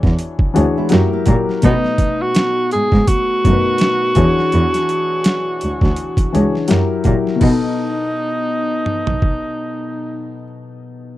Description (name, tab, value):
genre	R&B, neo-soul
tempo	83 BPM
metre	4/4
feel	swing 58% on 16ths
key	unclear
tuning	A4 = 440 Hz
part	warm baby grand piano	accompaniment	0.0-11.2 s	B2 to C#5	-20 LUFS	left 4 dB	none
part	rich cello	bass	0.0-7.5 s	C#2 to B2	-17 LUFS	right 1 dB	none
part	boom bap sampler-style drum kit	drums	0.0-9.4 s	crash cymbal, hi-hat, kick drum, snare drum, toms	-17 LUFS	right 1 dB	overdrive
part	flamenco guitar	second line	0.8-1.6 s	G#3 to G4	-25 LUFS	right 8 dB	none
part	breathy tenor saxophone	melody	1.6-10.4 s	D#4 to G#4	-19 LUFS	right 1 dB	none
room	little or no reverb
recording	dry, close 1970s-style studio recording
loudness	-14 LUFS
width	side -15 dB against mid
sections	0.0-7.4 A section; 7.4-10.3 B section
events	none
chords	0.0 E13; 0.9 F#7b9; 1.6 B7; 4.2 E13; 6.7 F#7b9; 7.4 B7